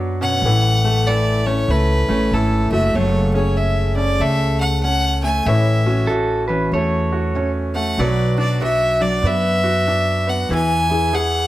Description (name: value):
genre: acoustic folk duo or small band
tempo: 96 BPM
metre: 4/4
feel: swing 62% on 8ths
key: unclear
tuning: A4 = 439 Hz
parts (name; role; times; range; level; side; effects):
- fingerpicked steel-string acoustic guitar; accompaniment; 0.0-11.5 s; A2 to C#5; -22 LUFS; left 2 dB; none
- bright upright piano; arpeggios; 0.0-11.5 s; E3 to G#4; -24 LUFS; right 2 dB; none
- upright bass; bass; 0.0-11.5 s; F#1 to F#2; -21 LUFS; equal; none
- rich fiddle; melody; 0.2-11.5 s; A4 to G#5; -20 LUFS; equal; none
- pedal steel guitar; second line; 6.1-7.5 s; A4 to C#5; -22 LUFS; right 2 dB; none
room: light reverb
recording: none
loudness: -15 LUFS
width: side -15 dB against mid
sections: 0.0-3.0 A section; 3.0-11.5 B section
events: fiddle solo 0.0-3.0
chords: 0.4 F#m7/A; 5.5 A6; 8.0 Bm; 10.5 E